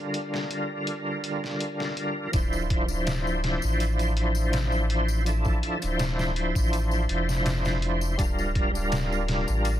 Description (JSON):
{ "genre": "trip hop", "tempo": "82 BPM", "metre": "4/4", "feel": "straight", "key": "D minor", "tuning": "A4 = 437 Hz", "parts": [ { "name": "overdriven tonewheel organ", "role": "accompaniment", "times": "0.0-9.8 s", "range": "D3 to C5", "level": "-28 LUFS", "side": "equal", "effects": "chorus vibrato, slow rotary speaker, tremolo, vintage 12-bit sampler grit, tape echo" }, { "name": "trip hop sampler-style drum kit", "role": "drums", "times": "0.1-9.8 s", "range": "hi-hat, kick drum, snare drum", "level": "-29 LUFS", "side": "equal", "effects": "high-pass filter on snare, high-pass filter on hats, high-pass filter on kick" }, { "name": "warm sub bass", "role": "bass", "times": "2.3-9.8 s", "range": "D1 to A1", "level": "-27 LUFS", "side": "equal", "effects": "tube saturation" }, { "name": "tambourine", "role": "percussion", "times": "2.3-9.8 s", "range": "none", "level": "-41 LUFS", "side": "left 8 dB", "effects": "none" } ], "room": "little or no reverb", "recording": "dense, heavily limited modern master", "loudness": "-24 LUFS", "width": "side -12 dB against mid", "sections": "0.0-2.3 A section; 2.3-9.8 B section", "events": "none", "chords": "0.0 Gm7/D; 2.3 Dm9; 8.2 Gm7/D", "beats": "0.14 0.87 1.60 | 2.34 3.07 3.80 4.53 | 5.26 6.00 6.73 7.46 | 8.19 8.92 9.65" }